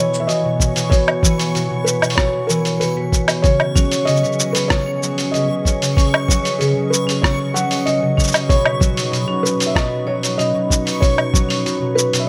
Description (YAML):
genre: folktronica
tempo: 95 BPM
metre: 4/4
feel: straight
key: C# minor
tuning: A4 = 440 Hz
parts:
  - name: felt-muted upright piano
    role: melody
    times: 0.0-12.3 s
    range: G#4 to F#5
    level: -24 LUFS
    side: equal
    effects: digital delay
  - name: vibraphone with hard mallets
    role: second line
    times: 0.0-12.3 s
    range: C#4 to G#5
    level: -28 LUFS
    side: equal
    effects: digital delay
  - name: warm analog pad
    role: sustained chords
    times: 0.0-12.3 s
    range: E3 to D#5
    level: -31 LUFS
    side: equal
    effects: chorus
  - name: concert harp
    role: arpeggios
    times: 0.0-12.3 s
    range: B2 to F#3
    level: -24 LUFS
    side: equal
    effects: digital delay
  - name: backwards swelling texture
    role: texture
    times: 0.1-12.3 s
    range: C#6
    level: -33 LUFS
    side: equal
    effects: built-in reverb
  - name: lo-fi sampler-style drum kit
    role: drums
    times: 0.1-12.3 s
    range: cabasa, hi-hat, rim click, woodblock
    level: -23 LUFS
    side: equal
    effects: overdrive
  - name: electronic kick drum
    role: drums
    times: 0.6-11.5 s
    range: none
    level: -19 LUFS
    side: equal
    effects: overdrive
room: light reverb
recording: none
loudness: -17 LUFS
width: mono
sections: 0.0-12.3 A section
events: none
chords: 0.0 C#m7; 3.4 G#7sus4; 8.5 B